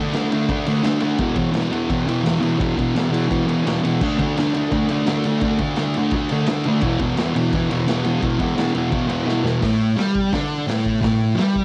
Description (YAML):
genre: garage rock duo or trio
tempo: 171 BPM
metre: 4/4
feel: straight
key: unclear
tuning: A4 = 440 Hz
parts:
  - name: thick fuzz guitar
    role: riff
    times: 0.0-11.6 s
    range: E2 to D4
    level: -21 LUFS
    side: equal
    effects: distortion, cassette tape
  - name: vintage drum kit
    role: drums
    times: 0.1-11.6 s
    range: crash cymbal, hi-hat, kick drum, ride cymbal, snare drum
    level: -28 LUFS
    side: equal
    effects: none
room: little or no reverb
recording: home recording on cassette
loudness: -20 LUFS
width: mono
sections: 0.0-9.6 A section; 9.6-11.6 B section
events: drum fill 9.3-9.6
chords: 0.0 D5; 1.2 E5; 4.0 D5; 6.8 E5; 9.6 A7sus4